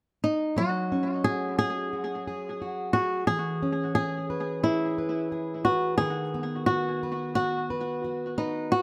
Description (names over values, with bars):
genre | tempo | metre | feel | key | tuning
acoustic pop | 88 BPM | 4/4 | swing 60% on 16ths | unclear | A4 = 438 Hz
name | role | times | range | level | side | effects
flamenco guitar | melody | 0.2-8.8 s | D#4 to G#4 | -30 LUFS | equal | tape echo
fingerpicked plugged-in steel-string acoustic guitar | accompaniment | 0.6-8.8 s | D#3 to B4 | -33 LUFS | equal | none
room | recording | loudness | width
light reverb | echo-heavy mix | -28 LUFS | mono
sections
0.6-8.8 A section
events
none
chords
0.0 N.C.; 0.6 F#sus2; 3.3 E6; 6.0 B/D#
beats
| 0.58 1.26 1.94 2.61 | 3.29 3.97 4.65 5.33 | 6.01 6.69 7.37 8.05 | 8.73